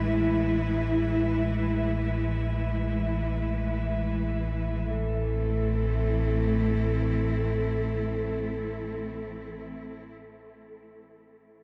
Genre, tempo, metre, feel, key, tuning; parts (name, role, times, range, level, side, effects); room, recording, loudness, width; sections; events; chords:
dark ambient drone; free time; A harmonic minor; A4 = 440 Hz
dark horsehead fiddle; melody; 0.0-9.6 s; E4 to A4; -35 LUFS; equal; tape echo
bright studio cello section; sustained chords; 0.0-10.2 s; E3 to B4; -34 LUFS; equal
deep rumbling drone; drone; 0.0-9.6 s; A1 to A2; -31 LUFS; equal; built-in reverb
icy glass pad; texture; 0.0-4.9 s; E5; -43 LUFS; equal; chorus, built-in reverb
moderate huge ambient reverb, RT60 8.9 s; dark, warm production; -28 LUFS; mono
0.0-4.9 A section; 4.9-9.7 B section
0.0 E; 4.9 Am